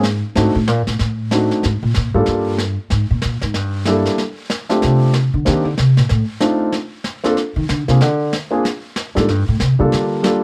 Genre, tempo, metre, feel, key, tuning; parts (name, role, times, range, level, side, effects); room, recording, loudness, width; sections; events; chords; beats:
jazz piano trio; 188 BPM; 4/4; swing 61% on 8ths; F major, Bb major from 6.7 s; A4 = 440 Hz
warm grand piano; melody; 0.0-10.4 s; G3 to A4; -19 LUFS; equal
upright bass; bass; 0.0-10.2 s; G2 to Eb3; -19 LUFS; equal
snare drum and brushed snare drum; drums; 0.0-10.4 s; -27 LUFS; equal
little or no reverb; close, detailed microphones; -17 LUFS; mono
0.0-6.7 A section; 6.7-10.4 A section
upright bass solo 0.0-10.4
0.4 D7b9; 1.6 Gm9; 4.2 F6; 5.5 Cm7; 6.1 F6; 6.7 Bbadd9 (rootless); 8.0 Bb7 (rootless); 9.3 Gm11
0.04 | 0.36 0.68 0.99 1.31 | 1.63 1.95 2.27 2.59 | 2.91 3.23 3.55 3.87 | 4.18 4.50 4.82 5.14 | 5.46 5.78 6.10 6.42 | 6.73 7.05 7.37 7.69 | 8.01 8.33 8.64 8.96 | 9.28 9.60 9.92 10.24